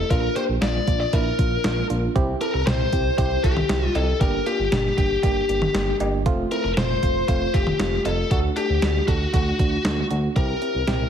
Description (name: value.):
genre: synth-pop.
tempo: 117 BPM.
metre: 4/4.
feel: straight.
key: unclear.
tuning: A4 = 441 Hz.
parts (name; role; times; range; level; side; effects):
biting lead guitar; melody; 0.0-11.1 s; F#4 to D5; -24 LUFS; left 4 dB; overdrive, slapback echo.
FM electric piano with auto-pan; accompaniment; 0.0-11.1 s; A3 to A4; -27 LUFS; right 4 dB; none.
smooth synth bass; bass; 0.0-11.1 s; F1 to D2; -25 LUFS; equal; none.
clean 12-bit digital drum machine; drums; 0.1-11.0 s; cowbell, hi-hat, kick drum, snare drum, toms; -24 LUFS; equal; none.
room: light reverb, digital ambience.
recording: heavily compressed radio sound.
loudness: -19 LUFS.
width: side -8 dB against mid.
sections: 0.0-10.4 A section.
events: none.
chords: 0.1 Bb; 2.2 C; 4.2 Gm; 6.3 Fadd9; 8.3 D; 10.4 C.